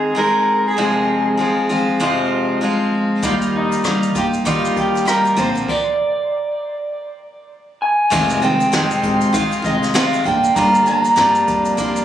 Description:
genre	acoustic pop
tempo	98 BPM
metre	4/4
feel	swing 60% on 16ths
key	unclear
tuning	A4 = 440 Hz
part	electric guitar through a small old amp	melody	0.0-11.7 s	Eb4 to Bb5	-18 LUFS	right 1 dB	spring reverb, digital delay
part	picked steel-string acoustic guitar	accompaniment	0.0-12.0 s	F2 to Ab4	-18 LUFS	equal	none
part	upright bass	bass	3.2-12.0 s	F1 to Eb3	-27 LUFS	left 1 dB	none
part	jazz brush drum kit	drums	3.2-12.0 s	crash cymbal, kick drum, rim click, shaker, snare drum	-25 LUFS	left 1 dB	none
part	tube shaker	percussion	3.2-12.0 s	none	-37 LUFS	left 5 dB	none
part	dark brass ensemble	sustained chords	8.1-12.0 s	G3 to C6	-28 LUFS	left 2 dB	none
room	moderate studio reverb, RT60 0.8 s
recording	recorded on a phone in the room, club reverb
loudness	-15 LUFS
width	side -10 dB against mid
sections	0.0-8.1 A section; 8.1-12.0 B section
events	stop 5.7-8.1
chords	0.0 Ab; 0.8 Fm; 3.2 Ebadd9; 5.4 Bbadd9; 8.1 Fm7; 10.3 Gm7

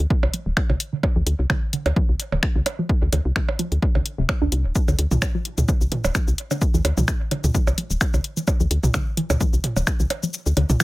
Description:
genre	minimal techno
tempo	129 BPM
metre	4/4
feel	swing 55% on 16ths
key	D minor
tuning	A4 = 438 Hz
part	woody FM bass	bass	0.0-10.8 s	D1 to D2	-21 LUFS	equal	sidechain pumping
part	punchy analog drum machine	drums	0.0-10.8 s	finger snaps, hi-hat, shaker	-25 LUFS	left 2 dB	overdrive
part	hollow square pluck	riff	0.1-10.8 s	C3 to D4	-28 LUFS	right 1 dB	chorus, phaser, sidechain pumping
part	electronic kick drum	drums	0.1-10.0 s	none	-22 LUFS	equal	overdrive
part	electronic percussion blips and toms	percussion	0.2-10.8 s	none	-26 LUFS	right 3 dB	dub echo
room	little or no reverb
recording	none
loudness	-19 LUFS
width	side -19 dB against mid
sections	0.0-10.8 A section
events	filter sweep on synth arpeggio sound 0.0-10.8; kick drops out 10.3-10.8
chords	0.0 D5

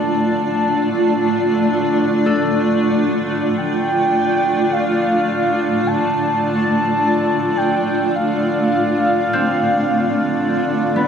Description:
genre	ambient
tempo	free time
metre	none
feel	none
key	D dorian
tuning	A4 = 440 Hz
part	warm velvety synth lead	melody	0.0-11.1 s	F5 to A5	-21 LUFS	equal	chorus
part	granular cloud pad	sustained chords	0.0-11.1 s	A3 to D5	-17 LUFS	equal	built-in reverb
part	concert harp	arpeggios	0.0-11.1 s	B3 to A5	-27 LUFS	left 1 dB	tape echo
part	hand-pumped harmonium	drone	0.0-11.1 s	D3 to D4	-25 LUFS	equal	none
room	wet concert hall reverb, RT60 2.4 s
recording	none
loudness	-15 LUFS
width	side -7 dB against mid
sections	0.0-11.1 A section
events	none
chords	0.0 Dm

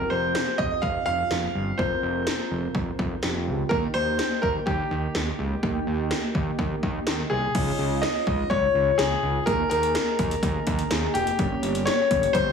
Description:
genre	synth-pop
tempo	125 BPM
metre	4/4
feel	straight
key	unclear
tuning	A4 = 439 Hz
part	clear grand piano	melody	0.0-12.5 s	G4 to F5	-25 LUFS	left 2 dB	analog delay
part	soft electric-piano-like synth keys	accompaniment	0.0-12.5 s	Bb3 to Bb4	-31 LUFS	right 2 dB	chorus, phaser
part	fat analog bass	bass	0.0-12.5 s	F1 to Eb2	-28 LUFS	equal	none
part	80s electronic pad drums	drums	0.3-12.5 s	crash cymbal, hi-hat, kick drum, snare drum	-28 LUFS	equal	overdrive
room	moderate plate reverb, RT60 1.1 s, digital ambience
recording	heavily compressed radio sound, multiband compression, studio reverb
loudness	-22 LUFS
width	side -6 dB against mid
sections	0.0-7.5 A section; 7.5-12.5 B section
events	none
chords	0.0 Fsus2; 3.7 Eb; 7.5 Dbadd9; 9.5 Ebsus4; 11.4 Gdim

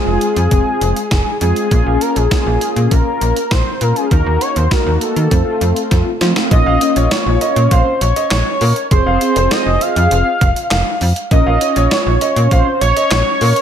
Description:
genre	synth-pop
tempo	100 BPM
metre	4/4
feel	straight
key	Bb minor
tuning	A4 = 441 Hz
part	octave-doubled lead	melody	0.0-13.6 s	Ab4 to F5	-17 LUFS	equal	chorus, ping-pong delay
part	mellow synth brass	accompaniment	0.0-12.7 s	Ab3 to Db5	-20 LUFS	left 1 dB	chorus
part	slap-like FM bass	bass	0.1-13.5 s	F1 to F3	-15 LUFS	equal	none
part	clean 12-bit digital drum machine	drums	0.2-13.6 s	handclaps, hi-hat, kick drum, snare drum	-18 LUFS	equal	none
part	warm grand piano	second line	6.7-13.5 s	Bb4 to F5	-21 LUFS	right 3 dB	ping-pong delay
room	light reverb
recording	none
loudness	-12 LUFS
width	side -9 dB against mid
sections	0.0-6.5 A section; 6.5-13.6 B section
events	drum fill 5.9-6.5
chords	0.0 Fm; 1.7 Bbm7; 4.1 Ebm; 5.3 F; 6.5 Bbm; 8.9 Fm; 11.3 Bbm

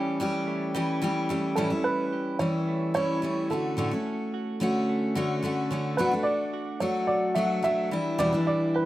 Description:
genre	acoustic pop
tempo	109 BPM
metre	4/4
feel	straight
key	unclear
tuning	A4 = 439 Hz
part	picked steel-string acoustic guitar	accompaniment	0.0-8.9 s	E2 to G4	-26 LUFS	left 1 dB	none
part	direct-recorded clean electric guitar	arpeggios	0.0-8.9 s	E3 to G4	-38 LUFS	right 11 dB	slapback echo
part	warm upright piano	melody	1.6-8.9 s	A4 to E5	-29 LUFS	right 2 dB	slapback echo
room	little or no reverb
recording	recorded outdoors, with no room sound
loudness	-25 LUFS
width	side -15 dB against mid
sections	0.0-1.6 A section; 1.6-8.9 B section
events	none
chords	0.0 A7; 3.5 Dmaj7/A; 6.0 Bm7 (rootless); 7.9 Em7

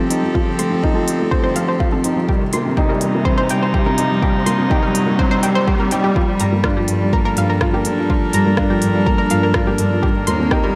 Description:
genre	piano and strings electronica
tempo	124 BPM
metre	4/4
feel	straight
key	G minor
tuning	A4 = 439 Hz
part	rich string quartet	sustained chords	0.0-10.8 s	C3 to Bb4	-24 LUFS	equal	sidechain pumping
part	analog pluck	arpeggios	0.0-10.7 s	F4 to C6	-26 LUFS	equal	chorus, sidechain pumping, tape echo
part	felt-muted upright piano	riff	0.0-10.8 s	F3 to G4	-21 LUFS	equal	tape echo
part	riser	sound effects	0.1-6.2 s	none	-30 LUFS	equal	none
part	deep house drum kit	drums	0.1-10.6 s	hi-hat, rim click	-26 LUFS	equal	high-pass filter on hats, high-pass filter on snare
part	electronic kick drum	drums	0.4-10.6 s	none	-22 LUFS	equal	none
part	dark studio cello section	bass	6.4-10.4 s	Eb2 to G2	-23 LUFS	equal	sidechain pumping
room	moderate recital hall reverb, RT60 1.4 s, studio ambience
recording	none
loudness	-17 LUFS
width	mono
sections	0.0-6.2 A section; 6.2-10.8 B section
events	build-up 0.0-6.2; riser 0.1-6.2; filter sweep on synth arpeggio sound 0.0-6.2; drop 6.2-10.8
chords	0.0 F7; 2.3 Cm7; 6.2 Gm7; 10.0 Eb6

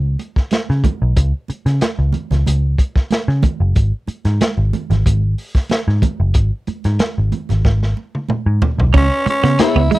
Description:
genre	funk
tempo	93 BPM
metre	4/4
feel	straight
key	C# minor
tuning	A4 = 439 Hz
part	vintage muted picked electric bass	bass	0.0-9.9 s	F#1 to C#3	-15 LUFS	equal	none
part	crunchy breakbeat drum kit	drums	0.2-10.0 s	crash cymbal, hi-hat, kick drum, snare drum, toms	-17 LUFS	equal	none
part	congas	percussion	0.2-10.0 s	none	-24 LUFS	right 7 dB	none
part	clean electric guitar	riff	8.9-10.0 s	G#3 to C#4	-17 LUFS	right 9 dB	none
part	growling tenor saxophone	melody	9.0-10.0 s	C#4 to E4	-17 LUFS	equal	none
part	mellow electric guitar	accompaniment	9.6-9.8 s	B3 to C#5	-16 LUFS	left 8 dB	ensemble chorus
room	little or no reverb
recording	dry, close 1970s-style studio recording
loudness	-14 LUFS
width	side -18 dB against mid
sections	0.0-8.9 A section; 8.9-10.0 B section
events	drum fill 7.6-8.9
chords	0.0 N.C.; 8.9 C#m7

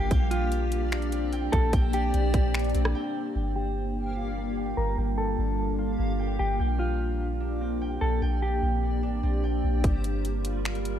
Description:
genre	hip hop, atmospheric cloud-rap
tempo	148 BPM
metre	4/4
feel	half-time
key	G minor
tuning	A4 = 442 Hz
part	mellow electric guitar	melody	0.0-9.8 s	F4 to Bb4	-33 LUFS	equal	low-pass filter, digital delay
part	ethereal airy pad	sustained chords	0.0-11.0 s	G3 to F5	-32 LUFS	left 1 dB	ensemble chorus, built-in reverb, sidechain pumping, low-pass filter
part	concert harp	arpeggios	0.0-11.0 s	Bb3 to G5	-38 LUFS	right 2 dB	low-pass filter, digital delay
part	soft 808-style bass	bass	0.0-11.0 s	G1 to Bb1	-28 LUFS	equal	none
part	backwards swelling texture	texture	0.0-11.0 s	G3 to F5	-40 LUFS	left 1 dB	built-in reverb
part	trap drum kit	drums	0.1-2.9, 9.8-10.9 s	finger snaps, hi-hat, kick drum, rim click	-27 LUFS	equal	none
room	digital ambience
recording	none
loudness	-25 LUFS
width	side -10 dB against mid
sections	0.0-3.4 A section; 3.4-9.8 B section; 9.8-11.0 C section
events	break 2.9-3.4; filter sweep 3.4-9.8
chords	0.1 Bb69; 3.4 Gm7; 6.6 Bb69; 9.8 Gm7

